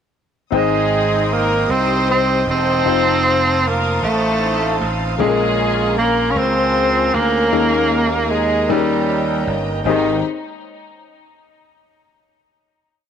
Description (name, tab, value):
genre	slow gospel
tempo	51 BPM (dotted quarters)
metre	6/8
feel	straight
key	Ab major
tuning	A4 = 441 Hz
part	warm grand piano	accompaniment	0.5-10.2 s	Ab1 to G5	-23 LUFS	left 13 dB	none
part	mellow tonewheel organ	sustained chords	0.5-10.2 s	Ab3 to Eb6	-25 LUFS	right 12 dB	slow rotary speaker
part	rich symphonic string section	sustained chords	0.5-10.2 s	Ab3 to Eb6	-30 LUFS	left 3 dB	none
part	gritty slap bass	bass	0.5-10.2 s	Fb1 to Eb2	-22 LUFS	equal	overdrive
part	breathy tenor saxophone	melody	0.6-10.2 s	Eb3 to Db4	-18 LUFS	right 3 dB	none
part	warm studio string section	melody	0.6-10.2 s	Bb3 to C5	-22 LUFS	left 5 dB	tape echo
room	moderate spring reverb, RT60 1.9 s, small room ambience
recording	1960s-style stereo with parts hard left and right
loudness	-14 LUFS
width	side -8 dB against mid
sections	0.5-9.9 verse; 9.9-12.2 final chord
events	none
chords	0.5 Abmaj7; 2.9 F7; 5.2 Bbm7; 7.5 Eb7sus4; 8.7 Eb7; 9.9 Abmaj7